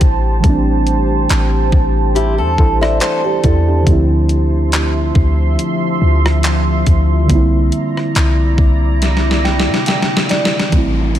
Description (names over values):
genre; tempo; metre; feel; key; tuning
contemporary R&B; 70 BPM; 4/4; swing 54% on 16ths; unclear; A4 = 439 Hz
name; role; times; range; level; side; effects
muted felt-like synth keys; accompaniment; 0.0-11.2 s; D3 to G5; -18 LUFS; right 3 dB; chorus
deep dark ambient pad; sustained chords; 0.0-10.7 s; F3 to C6; -21 LUFS; equal; chorus, built-in reverb
clean 808-style bass; bass; 0.0-11.2 s; A1 to C3; -15 LUFS; equal; none
gated 80s digital drum machine; drums; 0.0-11.2 s; handclaps, hi-hat, kick drum, rim click, snare drum; -16 LUFS; left 1 dB; gated reverb, gated reverb snare, overdrive
fingerpicked steel-string acoustic guitar; arpeggios; 2.2-3.8 s; E4 to E5; -19 LUFS; left 5 dB; ping-pong delay
downlifter; sound effects; 10.7-11.2 s; none; -24 LUFS; right 1 dB; none
room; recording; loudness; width
digital ambience; none; -12 LUFS; side -11 dB against mid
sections
0.0-10.7 A section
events
drum fill 9.0-10.7; synth keys fill 9.0-10.7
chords
0.0 Am7; 3.9 Dm9; 7.3 C9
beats
| 0.44 1.30 2.15 3.01 | 3.87 4.72 5.58 6.44 | 7.30 8.15 9.01 9.87 | 10.72